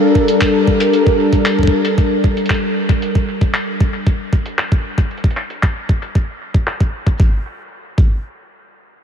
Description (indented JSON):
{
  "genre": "IDM",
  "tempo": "115 BPM",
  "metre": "4/4",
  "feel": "straight",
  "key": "G minor",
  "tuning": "A4 = 440 Hz",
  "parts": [
    { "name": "warm analog pad", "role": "sustained chords", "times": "0.0-3.0 s", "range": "G3 to D5", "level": "-15 LUFS", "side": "left 1 dB", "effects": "chorus, vintage 12-bit sampler grit" },
    { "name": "electronic kick drum", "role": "drums", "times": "0.2-8.1 s", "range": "none", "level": "-14 LUFS", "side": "equal", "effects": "none" },
    { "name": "jungle sampler-style drum kit", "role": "drums", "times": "0.3-7.2 s", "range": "handclaps, hi-hat", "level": "-23 LUFS", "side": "equal", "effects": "low-pass filter on hats, low-pass filter on snare, low-pass filter on room, ping-pong delay" }
  ],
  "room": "wet huge ambient reverb, RT60 7.3 s",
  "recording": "dreamy mix soaked in reverb",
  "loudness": "-14 LUFS",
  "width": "side -8 dB against mid",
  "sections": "0.0-7.2 A section; 7.2-9.0 B section",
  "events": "filter sweep on drum 0.0-7.2; filter sweep on analog synth pad 0.0-3.0",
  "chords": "0.0 Gm; 3.0 N.C."
}